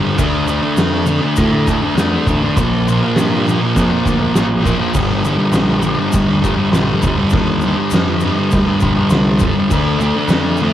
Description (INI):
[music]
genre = garage rock duo or trio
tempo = 101 BPM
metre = 4/4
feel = straight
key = G minor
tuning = A4 = 441 Hz
[part]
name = thick fuzz guitar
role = riff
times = 0.0-10.7 s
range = G2 to D4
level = -14 LUFS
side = equal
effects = distortion
[part]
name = oversized low-tuned drum kit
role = drums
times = 0.0-10.7 s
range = crash cymbal, kick drum, snare drum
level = -19 LUFS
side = equal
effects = cassette tape
[part]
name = growling picked electric bass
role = bass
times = 0.2-10.7 s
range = G1 to A2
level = -21 LUFS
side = equal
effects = overdrive
[part]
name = egg shaker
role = percussion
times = 0.2-10.7 s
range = none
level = -35 LUFS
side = left 9 dB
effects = none
[sound]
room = light reverb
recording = home recording on cassette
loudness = -12 LUFS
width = side -11 dB against mid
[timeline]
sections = 0.0-10.7 A section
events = none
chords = 0.2 Dm; 2.6 Bb5; 5.0 Gm; 9.7 Dm